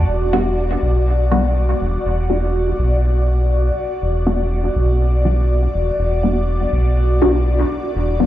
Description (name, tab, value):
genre	dub techno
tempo	122 BPM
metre	4/4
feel	straight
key	E minor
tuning	A4 = 440 Hz
part	airy breathy pad	sustained chords	0.0-8.3 s	F#4 to B5	-22 LUFS	equal	chorus, phaser
part	round analog bass	bass	0.0-8.3 s	E1 to B1	-17 LUFS	equal	none
part	filtered dub chord stab	stabs	0.3-8.3 s	G3 to F#4	-22 LUFS	left 1 dB	phaser, dub echo
room	light reverb, digital ambience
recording	played on a big sound system in a bare room, large studio reverb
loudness	-15 LUFS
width	side -13 dB against mid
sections	0.0-8.3 A section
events	filter sweep on synth stab 0.0-8.3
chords	0.0 Em9